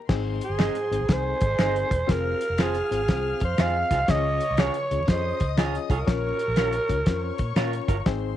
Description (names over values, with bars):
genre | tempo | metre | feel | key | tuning
uptempo 1960s-style soul | 120 BPM | 4/4 | swing 65% on 8ths | Ab major | A4 = 440 Hz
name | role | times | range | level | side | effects
dark chamber violin section | second line | 0.1-8.4 s | Ab4 to F6 | -36 LUFS | left 10 dB | none
reed electric piano | accompaniment | 0.1-8.4 s | Ab2 to Db5 | -32 LUFS | left 10 dB | fast tremolo
vintage muted fingered electric bass | bass | 0.1-8.4 s | Fb1 to Bb2 | -29 LUFS | equal | none
cloth-damped thuddy drum kit | drums | 0.1-8.2 s | crash cymbal, hi-hat, kick drum, snare drum | -24 LUFS | equal | none
breathy alto saxophone | melody | 0.4-7.9 s | Ab4 to F5 | -26 LUFS | right 3 dB | none
electric guitar through a small old amp | stabs | 0.6-8.0 s | Eb4 to Db5 | -32 LUFS | right 10 dB | none
finger snap | percussion | 0.6-7.7 s | none | -37 LUFS | left 12 dB | none
room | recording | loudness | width
light reverb | 1960s-style stereo with parts hard left and right, vinyl crackle | -22 LUFS | side -12 dB against mid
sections
0.1-8.4 A section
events
none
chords
0.1 Ab; 2.1 Fm; 4.1 Db; 6.1 Bbm